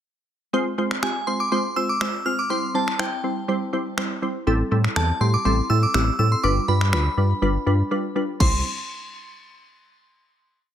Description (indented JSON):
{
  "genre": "dance-pop",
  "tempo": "122 BPM",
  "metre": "4/4",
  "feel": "straight",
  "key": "unclear",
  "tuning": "A4 = 440 Hz",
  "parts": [
    { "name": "glassy wavetable pluck", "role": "accompaniment", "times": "0.5-8.6 s", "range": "G3 to C5", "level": "-24 LUFS", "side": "equal", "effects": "chorus, sidechain pumping" },
    { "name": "house drum kit", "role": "drums", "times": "0.9-8.5 s", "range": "crash cymbal, finger snaps, kick drum", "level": "-25 LUFS", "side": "left 1 dB", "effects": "none" },
    { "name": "glassy synth bell", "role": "melody", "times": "1.0-8.6 s", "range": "G5 to F6", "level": "-25 LUFS", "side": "right 1 dB", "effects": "chorus, tape echo" },
    { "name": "round analog bass", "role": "bass", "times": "4.5-8.6 s", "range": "G1 to A2", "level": "-20 LUFS", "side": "equal", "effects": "sidechain pumping" }
  ],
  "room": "light reverb, digital ambience",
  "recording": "none",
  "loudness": "-20 LUFS",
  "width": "side -10 dB against mid",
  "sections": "0.5-8.4 verse; 8.4-10.4 final chord",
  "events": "break 7.9-8.4",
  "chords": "0.5 Fm; 2.5 C; 4.5 Am7; 6.4 G7; 8.4 N.C.",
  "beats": "| 0.54 1.03 1.52 2.01 | 2.50 2.99 3.49 3.98 | 4.47 4.96 5.45 5.95 | 6.44 6.93 7.42 7.91 | 8.40"
}